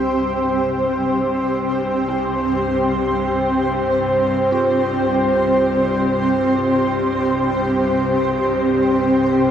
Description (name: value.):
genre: dark ambient drone.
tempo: free time.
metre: none.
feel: none.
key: unclear.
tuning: A4 = 441 Hz.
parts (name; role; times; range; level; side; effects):
granular cloud pad; sustained chords; 0.0-9.5 s; C4 to C5; -16 LUFS; equal; built-in reverb.
bowed-like drone; drone; 0.0-9.5 s; C2 to G2; -26 LUFS; left 1 dB; built-in reverb.
dark detuned synth bell; arpeggios; 2.1-9.5 s; C4 to F4; -35 LUFS; right 1 dB; none.
room: wet plate reverb, RT60 3.4 s.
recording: dreamy mix soaked in reverb.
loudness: -16 LUFS.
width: side -9 dB against mid.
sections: 0.0-9.5 A section.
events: none.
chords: 0.0 C5.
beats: free time.